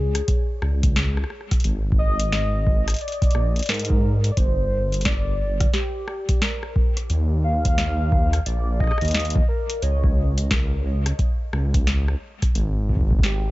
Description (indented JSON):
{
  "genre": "IDM",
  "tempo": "88 BPM",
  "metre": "4/4",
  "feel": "swing 62% on 16ths",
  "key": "Eb major",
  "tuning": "A4 = 438 Hz",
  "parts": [
    { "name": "warm velvety synth lead", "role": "melody", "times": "0.0-13.5 s", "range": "G4 to F5", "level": "-28 LUFS", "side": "equal", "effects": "chorus, analog delay" },
    { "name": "dark detuned saw bass", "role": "bass", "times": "0.0-13.5 s", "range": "G1 to Ab2", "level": "-22 LUFS", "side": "equal", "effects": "none" },
    { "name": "booming analog drum machine", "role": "drums", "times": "0.1-13.4 s", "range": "hi-hat, rim click, snare drum, toms", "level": "-27 LUFS", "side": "left 1 dB", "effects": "none" },
    { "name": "electronic kick drum", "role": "drums", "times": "0.3-13.2 s", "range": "none", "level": "-21 LUFS", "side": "equal", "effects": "none" }
  ],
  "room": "little or no reverb",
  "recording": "echo-heavy mix, nothing above 7.7 kHz",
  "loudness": "-19 LUFS",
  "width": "side -18 dB against mid",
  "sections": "0.0-13.5 A section",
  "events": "none",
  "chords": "0.0 Db5; 1.6 Absus2; 4.4 G5; 7.1 Ebsus2; 9.8 N.C."
}